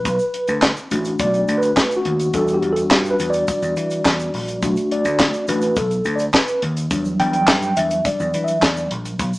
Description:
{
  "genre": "early-eighties boogie funk",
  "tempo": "105 BPM",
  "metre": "4/4",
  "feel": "straight",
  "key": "E minor",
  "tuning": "A4 = 439 Hz",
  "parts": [
    { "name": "mellow tine electric piano", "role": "accompaniment", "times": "0.0-9.2 s", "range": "F#3 to G5", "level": "-20 LUFS", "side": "equal", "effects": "medium stereo tremolo" },
    { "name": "vintage slap bass", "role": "bass", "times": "0.1-9.3 s", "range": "A1 to E3", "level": "-24 LUFS", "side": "equal", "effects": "none" },
    { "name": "tight funk drum kit", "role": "drums", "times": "0.1-9.3 s", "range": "handclaps, hi-hat, kick drum, snare drum", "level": "-19 LUFS", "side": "equal", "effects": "none" },
    { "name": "egg shaker", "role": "percussion", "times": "0.1-9.4 s", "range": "none", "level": "-38 LUFS", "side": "right 2 dB", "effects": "none" }
  ],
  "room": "moderate studio reverb, RT60 0.7 s",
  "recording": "band playing live in one room, small speaker sound",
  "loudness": "-16 LUFS",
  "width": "side -20 dB against mid",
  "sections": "0.0-9.4 A section",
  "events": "tine electric piano solo 0.0-9.4",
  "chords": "0.1 Bm7; 2.3 Em9; 4.6 Bm7; 6.9 Em9"
}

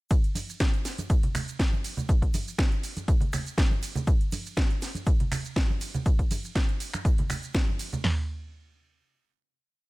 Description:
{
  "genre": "house",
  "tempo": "121 BPM",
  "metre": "4/4",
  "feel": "swing 53% on 16ths",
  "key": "none",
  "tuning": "none",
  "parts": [
    { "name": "house drum kit", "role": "drums", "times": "0.1-8.0 s", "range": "finger snaps, hi-hat, ride cymbal, shaker, snare drum", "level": "-33 LUFS", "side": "right 1 dB", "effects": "sidechain pumping on hats, sidechain pumping on cymbals, sidechain pumping on perc" },
    { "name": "punchy analog drum machine", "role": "drums", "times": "0.1-8.2 s", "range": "hi-hat, kick drum, snare drum, toms", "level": "-24 LUFS", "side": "equal", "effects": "none" },
    { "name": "tube shaker and congas", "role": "percussion", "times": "0.1-8.0 s", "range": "none", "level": "-34 LUFS", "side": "right 2 dB", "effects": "sidechain pumping on perc" }
  ],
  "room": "little or no reverb",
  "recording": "none",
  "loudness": "-24 LUFS",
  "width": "side -21 dB against mid",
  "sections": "0.1-8.0 drop; 8.0-9.9 final hit",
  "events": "drop 0.1-8.0",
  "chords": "none"
}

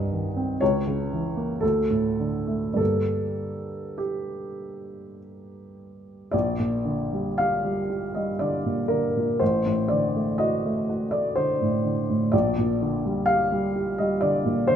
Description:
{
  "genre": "classical, romantic nocturne for solo piano",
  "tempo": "48-65 BPM",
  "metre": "3/4",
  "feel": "rubato",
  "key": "G minor",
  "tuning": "A4 = 440 Hz",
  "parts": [
    { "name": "clear upright piano", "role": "solo", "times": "0.0-14.8 s", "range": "A1 to F5", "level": "-23 LUFS", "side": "equal", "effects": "none" }
  ],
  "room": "moderate recital hall reverb, RT60 1.6 s",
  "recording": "close, detailed microphones",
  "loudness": "-22 LUFS",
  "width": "side -8 dB against mid",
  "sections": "0.0-6.3 A section; 6.3-14.8 B section",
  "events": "none",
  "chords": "0.0 Cm; 0.6 C#m6; 1.6 D5; 2.8 Gm; 6.3 Gm/Bb; 9.4 D7/A; 12.3 Gm/Bb"
}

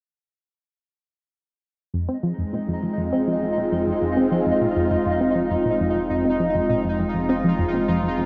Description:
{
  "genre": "ambient",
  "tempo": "101 BPM",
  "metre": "4/4",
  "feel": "straight",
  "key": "F minor",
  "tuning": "A4 = 440 Hz",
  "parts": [
    { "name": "sweeping resonant pad", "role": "sustained chords", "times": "1.9-8.3 s", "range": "Ab3 to F4", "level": "-25 LUFS", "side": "equal", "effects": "chorus" },
    { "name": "tight sequenced synth", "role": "riff", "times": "1.9-8.3 s", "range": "F2 to C4", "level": "-27 LUFS", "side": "equal", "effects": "chorus, cassette tape, delay" },
    { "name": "round analog bass", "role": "bass", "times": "1.9-8.3 s", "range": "F1", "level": "-43 LUFS", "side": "equal", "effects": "none" },
    { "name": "pulsing gated texture", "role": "texture", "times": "2.6-8.3 s", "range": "Eb4 to Eb5", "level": "-28 LUFS", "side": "equal", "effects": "chorus, built-in reverb" }
  ],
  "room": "wet huge ambient reverb, RT60 8.7 s",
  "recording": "nothing above 7.5 kHz",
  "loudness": "-22 LUFS",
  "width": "mono",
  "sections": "1.9-8.3 A section",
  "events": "fade-in on analog synth bass 1.9-8.3; filter sweep on synth arpeggio sound 1.9-8.3",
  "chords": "1.9 Fm"
}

